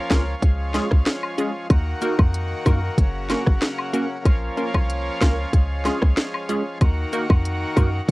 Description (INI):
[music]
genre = dancehall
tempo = 94 BPM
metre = 4/4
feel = straight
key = unclear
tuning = A4 = 440 Hz
[part]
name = accordion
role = sustained chords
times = 0.0-8.1 s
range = Db3 to Gb4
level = -28 LUFS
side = equal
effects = sidechain pumping, cassette tape
[part]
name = wavetable chord stab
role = accompaniment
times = 0.1-7.9 s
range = Ab3 to Bb4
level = -24 LUFS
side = equal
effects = phaser, cassette tape
[part]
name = short 808-style bass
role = bass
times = 0.1-8.1 s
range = Gb1 to Gb2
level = -22 LUFS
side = equal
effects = none
[part]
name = island pop drum kit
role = drums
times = 0.1-8.1 s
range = hi-hat, kick drum, rim click, snare drum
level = -18 LUFS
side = equal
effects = cassette tape
[part]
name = cabasa and woodblock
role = percussion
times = 0.1-7.9 s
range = none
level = -29 LUFS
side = left 3 dB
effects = none
[sound]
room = little or no reverb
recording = home recording on cassette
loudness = -19 LUFS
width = side -21 dB against mid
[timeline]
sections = 0.0-8.1 A section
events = none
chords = 0.4 Db; 1.7 Ebm; 3.0 Gb; 4.3 Bbm; 5.5 Db; 6.8 Ebm